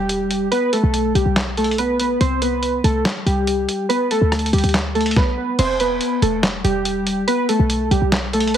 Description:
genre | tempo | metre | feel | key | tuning
hip hop, trap | 142 BPM | 4/4 | half-time | E minor | A4 = 440 Hz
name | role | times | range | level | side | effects
warbly lo-fi synth keys | melody | 0.0-8.6 s | G3 to C5 | -19 LUFS | equal | chorus, low-pass filter
short 808-style bass | bass | 0.0-8.6 s | E1 to D2 | -21 LUFS | equal | none
dusty soul sampler-style drum kit | drums | 0.1-8.6 s | crash cymbal, handclaps, hi-hat, kick drum, rim click, snare drum | -22 LUFS | equal | none
room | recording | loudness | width
digital ambience | heavily compressed radio sound | -16 LUFS | side -9 dB against mid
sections
0.0-5.6 A section; 5.6-8.6 B section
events
none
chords
0.0 Em; 0.5 Gadd9/B; 2.2 C5; 3.9 D5; 5.6 Em; 7.3 Gadd9/B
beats
0.09 | 0.52 0.94 1.36 1.78 | 2.21 2.63 3.05 3.48 | 3.90 4.32 4.74 5.17 | 5.59 6.01 6.43 6.86 | 7.28 7.70 8.12 8.54

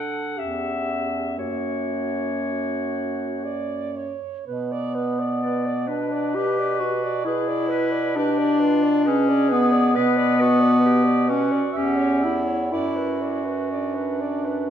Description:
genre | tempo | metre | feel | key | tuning
classical, lyrical piece for single-reed quartet | 56-68 BPM | 3/4 | rubato | B minor | A4 = 440 Hz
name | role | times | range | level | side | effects
clear clarinet | melody | 0.0-14.7 s | E#4 to F#5 | -29 LUFS | left 5 dB | none
warm alto saxophone | second line | 0.0-14.7 s | F#4 to E5 | -28 LUFS | right 9 dB | none
mellow clarinet | accompaniment | 0.0-14.7 s | A#3 to G4 | -22 LUFS | left 1 dB | none
clear bass clarinet | bass | 0.0-14.7 s | E2 to B2 | -28 LUFS | right 2 dB | none
room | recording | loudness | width
wet recital hall reverb, RT60 1.6 s | none | -20 LUFS | side -9 dB against mid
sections
0.0-4.5 A section; 4.5-14.7 B section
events
none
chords
0.4 C#dim/E; 1.4 F#; 4.5 Bm; 11.8 C#dim/E; 12.7 Bm/F#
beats
0.38 | 1.37 2.43 3.46 | 4.47 5.42 6.35 | 7.26 8.17 9.07 | 9.97 10.85 11.77 | 12.73 13.73

